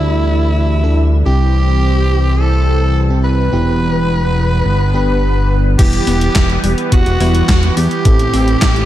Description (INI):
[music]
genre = synthwave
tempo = 106 BPM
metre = 4/4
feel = straight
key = unclear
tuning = A4 = 440 Hz
[part]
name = growling tenor saxophone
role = melody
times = 0.0-8.9 s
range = E4 to B4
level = -21 LUFS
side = right 1 dB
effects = digital delay
[part]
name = airy dreamy lead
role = second line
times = 0.0-8.9 s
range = E4 to B4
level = -23 LUFS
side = equal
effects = chorus, ping-pong delay
[part]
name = lush unison pad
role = sustained chords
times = 0.0-8.9 s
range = D3 to D4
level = -22 LUFS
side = equal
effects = chorus, sidechain pumping
[part]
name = FM electric piano with soft pad layer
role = stabs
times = 0.0-8.9 s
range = G2 to A4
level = -21 LUFS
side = right 2 dB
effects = chorus, tremolo
[part]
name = fat analog bass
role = bass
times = 0.0-8.8 s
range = E1 to E2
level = -14 LUFS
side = equal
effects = tube saturation
[part]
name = wide unison pluck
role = arpeggios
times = 5.8-8.8 s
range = G3 to E4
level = -23 LUFS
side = left 2 dB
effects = ping-pong delay
[part]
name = electronic kick drum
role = drums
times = 5.8-8.7 s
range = none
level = -13 LUFS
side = equal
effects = none
[part]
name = gated 80s digital drum machine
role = drums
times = 5.8-8.9 s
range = crash cymbal, handclaps, hi-hat, snare drum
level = -19 LUFS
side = equal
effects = gated reverb, gated reverb snare
[sound]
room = little or no reverb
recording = dark, warm production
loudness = -11 LUFS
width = side -13 dB against mid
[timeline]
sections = 0.0-5.8 A section; 5.8-8.9 B section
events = filter sweep on analog synth pad 0.0-5.8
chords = 0.0 Dsus2; 1.3 C; 3.5 Em; 4.7 G; 5.8 Em; 8.1 Am